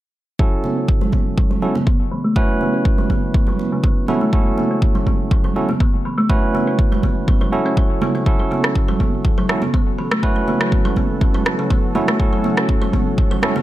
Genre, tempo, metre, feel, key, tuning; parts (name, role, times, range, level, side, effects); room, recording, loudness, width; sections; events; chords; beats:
afro house; 122 BPM; 4/4; straight; F# minor; A4 = 436 Hz
kalimba; arpeggios; 0.4-13.6 s; C#3 to C#4; -22 LUFS; left 1 dB; sidechain pumping, low-pass filter, ping-pong delay
barky tine electric piano; stabs; 0.4-13.5 s; C#4 to B4; -23 LUFS; right 2 dB; overdrive, sidechain pumping, low-pass filter, ping-pong delay
electronic kick drum; drums; 0.4-13.3 s; -17 LUFS; equal
congas; percussion; 0.6-13.6 s; -25 LUFS; right 4 dB
warm analog pad; sustained chords; 8.3-13.6 s; F#3 to A4; -27 LUFS; left 2 dB; chorus, sidechain pumping
electronic rim click; drums; 8.6-13.5 s; -22 LUFS; equal
small room ambience; -15 LUFS; side -14 dB against mid
0.4-13.6 A section
filter sweep on kalimba 0.4-13.6
0.4 F#m7
| 0.40 0.89 1.38 1.87 | 2.36 2.85 3.35 3.84 | 4.33 4.82 5.31 5.80 | 6.30 6.79 7.28 7.77 | 8.26 8.76 9.25 9.74 | 10.23 10.72 11.21 11.71 | 12.20 12.69 13.18